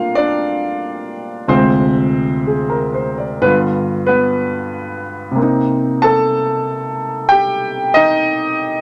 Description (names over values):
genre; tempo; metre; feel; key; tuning
solo jazz; 62 BPM; 4/4; swing 69% on 8ths, rubato; unclear; A4 = 444 Hz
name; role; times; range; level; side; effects
warm grand piano; solo; 0.0-8.8 s; D2 to A5; -16 LUFS; equal; none
room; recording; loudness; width
wet studio ambience, RT60 0.5 s; none; -16 LUFS; mono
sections
0.0-8.8 A section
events
none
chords
0.0 Bbmaj9; 1.5 Dm7b5; 3.4 G7; 5.4 Cm7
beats
0.47 | 1.48 2.46 3.43 4.40 | 5.37 6.34 7.31 8.29